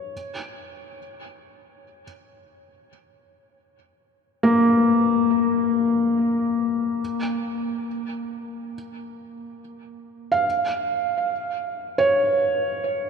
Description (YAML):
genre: ambient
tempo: free time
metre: none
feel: none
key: unclear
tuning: A4 = 440 Hz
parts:
  - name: felt-muted upright piano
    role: solo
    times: 0.0-13.1 s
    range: Bb3 to F5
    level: -21 LUFS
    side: left 1 dB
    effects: tape echo
room: wet cathedral reverb, RT60 6.1 s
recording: dark, warm production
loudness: -20 LUFS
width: side -6 dB against mid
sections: 0.0-7.0 A section; 7.0-13.1 B section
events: none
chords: 0.0 Bbm; 7.0 Bb5; 10.4 Db